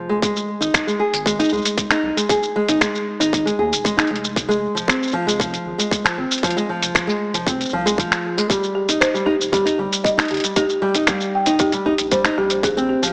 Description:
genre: folktronica.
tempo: 116 BPM.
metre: 4/4.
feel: straight.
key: Ab major.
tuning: A4 = 439 Hz.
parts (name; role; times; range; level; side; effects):
nylon-string guitar; arpeggios; 0.0-13.1 s; F3 to Ab4; -23 LUFS; equal; digital delay.
round analog bass; bass; 0.0-13.1 s; Eb1 to Eb2; -37 LUFS; equal; none.
electronic kick drum; drums; 0.2-12.7 s; none; -28 LUFS; equal; none.
lo-fi sampler-style drum kit; drums; 0.2-13.1 s; finger snaps, hi-hat, shaker; -23 LUFS; equal; none.
folk marimba with medium mallets; second line; 8.5-13.1 s; G3 to G5; -23 LUFS; equal; digital delay.
room: moderate concert hall reverb, RT60 2.2 s.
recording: small speaker sound.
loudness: -19 LUFS.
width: mono.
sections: 0.2-13.1 A section.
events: none.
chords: 0.2 Ab; 8.5 Eb.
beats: | 0.23 0.74 1.26 1.78 | 2.29 2.81 3.33 3.85 | 4.36 4.88 5.40 5.92 | 6.43 6.95 7.47 7.99 | 8.50 9.02 9.54 10.05 | 10.57 11.09 11.61 12.12 | 12.64.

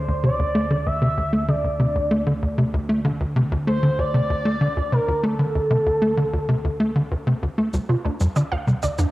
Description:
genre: ambient, sequencer-driven space music.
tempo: 96 BPM.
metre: 4/4.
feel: straight.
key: unclear.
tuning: A4 = 440 Hz.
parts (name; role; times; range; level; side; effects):
expressive synth lead; melody; 0.0-7.4 s; A4 to E5; -24 LUFS; equal; wide subtle chorus, cassette tape, ping-pong delay.
analog drone; bass; 0.0-9.1 s; D2; -30 LUFS; equal; chorus.
tight sequencer bass; riff; 0.1-9.1 s; D2 to A3; -21 LUFS; equal; cassette tape, ping-pong delay.
congas and shaker; percussion; 7.7-9.1 s; none; -31 LUFS; equal; cassette tape, ping-pong delay.
wide unison pluck; arpeggios; 7.9-9.1 s; D4 to F5; -27 LUFS; right 4 dB; auto-pan, cassette tape, ping-pong delay.
room: wet spring reverb, RT60 1.5 s, digital ambience.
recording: home recording on cassette.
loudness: -19 LUFS.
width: side -17 dB against mid.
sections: 0.0-9.1 A section.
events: none.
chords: 0.0 D5.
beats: | 0.23 0.86 1.48 2.11 | 2.73 3.36 3.98 4.61 | 5.23 5.86 6.48 7.11 | 7.73 8.36 8.98.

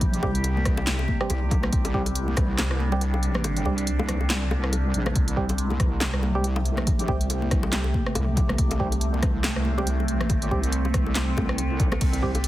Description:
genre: deep dubstep.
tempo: 140 BPM.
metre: 4/4.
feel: swing 58% on 16ths, half-time.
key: unclear.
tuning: A4 = 440 Hz.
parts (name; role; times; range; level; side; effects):
overtone-sweeping drone; sustained chords; 0.0-12.5 s; C3 to G4; -30 LUFS; right 1 dB; chorus, built-in reverb.
wobble bass; bass; 0.0-12.5 s; Bb1 to C2; -25 LUFS; equal; chorus.
deep house drum kit; drums; 0.0-12.5 s; handclaps, hi-hat, ride cymbal, rim click, snare drum; -29 LUFS; equal; none.
electronic kick drum; drums; 0.0-2.5, 5.2-12.3 s; none; -25 LUFS; equal; none.
percussive organ stab; stabs; 0.2-12.3 s; G3 to G4; -32 LUFS; right 2 dB; chorus, dub echo.
bongos and congas; percussion; 0.2-12.4 s; none; -33 LUFS; left 2 dB; dub echo.
room: light reverb.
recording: heavily compressed radio sound, multiband compression.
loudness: -22 LUFS.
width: side -15 dB against mid.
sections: 0.0-12.5 A section.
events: kick drops out 3.4-5.2.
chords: 0.0 C5.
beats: | 0.01 0.44 0.87 1.30 | 1.73 2.15 2.58 3.01 | 3.44 3.87 4.30 4.73 | 5.16 5.58 6.01 6.44 | 6.87 7.30 7.73 8.15 | 8.58 9.01 9.44 9.87 | 10.30 10.73 11.15 11.58 | 12.01 12.44.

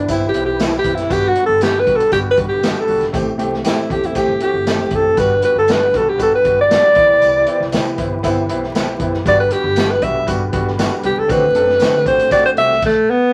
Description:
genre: uptempo 1960s-style soul.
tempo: 118 BPM.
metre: 4/4.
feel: straight.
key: G major.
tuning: A4 = 441 Hz.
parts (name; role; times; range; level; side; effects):
warm alto saxophone; melody; 0.0-13.3 s; A3 to E5; -16 LUFS; equal; none.
tonewheel organ; sustained chords; 0.0-12.8 s; D3 to B4; -28 LUFS; equal; slow rotary speaker, chorus vibrato.
upright bass; bass; 0.0-12.8 s; F#1 to D3; -28 LUFS; equal; none.
warm upright piano; accompaniment; 0.1-12.7 s; G3 to A4; -25 LUFS; equal; none.
swinging big-band drum kit; drums; 0.1-12.9 s; crash cymbal, hi-hat, kick drum, snare drum; -25 LUFS; equal; none.
tambourine; percussion; 0.1-12.4 s; none; -39 LUFS; equal; none.
room: moderate studio reverb, RT60 0.6 s.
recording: vinyl crackle.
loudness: -15 LUFS.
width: mono.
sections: 0.0-13.3 A section.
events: alto saxophone solo 0.0-13.3.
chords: 0.0 Cmaj7; 1.1 Gmaj7; 3.1 Am7; 5.2 Gmaj7; 7.0 Cmaj7; 9.3 Gmaj7; 11.3 D7.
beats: 0.09 0.60 | 1.11 1.62 2.12 2.63 | 3.14 3.65 4.16 4.67 | 5.18 5.69 6.20 6.71 | 7.22 7.73 8.24 8.75 | 9.26 9.77 10.28 10.79 | 11.29 11.80 12.31 12.82.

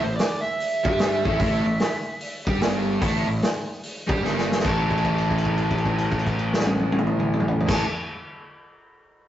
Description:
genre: blues rock power trio and southern rock.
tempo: 148 BPM.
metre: 4/4.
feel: swing 64% on 8ths.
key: unclear.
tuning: A4 = 439 Hz.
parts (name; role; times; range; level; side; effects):
smooth overdriven lead guitar; melody; 0.0-7.8 s; C5 to A5; -28 LUFS; right 1 dB; none.
overdriven electric guitar; riff; 0.0-7.9 s; G2 to G4; -26 LUFS; equal; none.
fuzz fingered electric bass; bass; 0.0-7.8 s; G1 to G2; -27 LUFS; equal; overdrive.
vintage drum kit; drums; 0.2-7.8 s; crash cymbal, hi-hat, kick drum, snare drum, toms; -25 LUFS; equal; none.
room: moderate stone room reverb, RT60 1.0 s.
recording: rough rehearsal-room recording, tube saturation, nothing above 7.8 kHz.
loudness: -21 LUFS.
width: side -12 dB against mid.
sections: 0.0-4.6 A section; 4.6-7.9 B section.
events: drum fill 4.2-4.6; held note 4.6-7.6.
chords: 0.0 A5.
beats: 0.17 0.58 0.99 | 1.39 1.80 2.20 2.61 | 3.02 3.42 3.83 4.23 | 4.64 5.04 5.45 5.85 | 6.26 6.66 7.07 7.47.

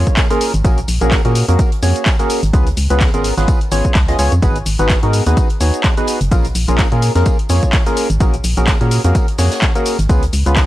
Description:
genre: piano house.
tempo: 127 BPM.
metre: 4/4.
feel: swing 56% on 16ths.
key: unclear.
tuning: A4 = 440 Hz.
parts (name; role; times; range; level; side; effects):
percussive organ stab; riff; 0.0-10.7 s; A#3 to D#5; -19 LUFS; equal; analog chorus, sidechain pumping, analog delay.
organ-like FM bass; bass; 0.0-10.6 s; F#1 to A#2; -15 LUFS; equal; sidechain pumping.
downlifter; sound effects; 0.1-0.6 s; none; barely audible; none; none.
electronic kick drum; drums; 0.1-10.7 s; none; -15 LUFS; equal; overdrive.
punchy analog drum machine; drums; 0.1-10.7 s; cabasa, handclaps, hi-hat; -22 LUFS; left 1 dB; overdrive.
big rock drum kit; drums; 0.2-10.7 s; hi-hat, snare drum, tambourine; -32 LUFS; equal; high-pass filter on hats, high-pass filter on snare, high-pass filter on perc, high-pass filter on room.
room: little or no reverb.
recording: dry, gritty hardware recording, cassette tape.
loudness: -12 LUFS.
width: side -15 dB against mid.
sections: 0.0-10.7 A section.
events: none.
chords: 0.0 A#m7; 0.6 F#add9/A#; 2.5 C#7; 4.4 G#m7; 6.3 A#m7; 8.2 F#add9/A#; 10.1 C#7.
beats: 0.17 | 0.65 1.12 1.59 2.06 | 2.54 3.01 3.48 3.95 | 4.42 4.90 5.37 5.84 | 6.32 6.79 7.26 7.73 | 8.21 8.68 9.15 9.62 | 10.10 10.57.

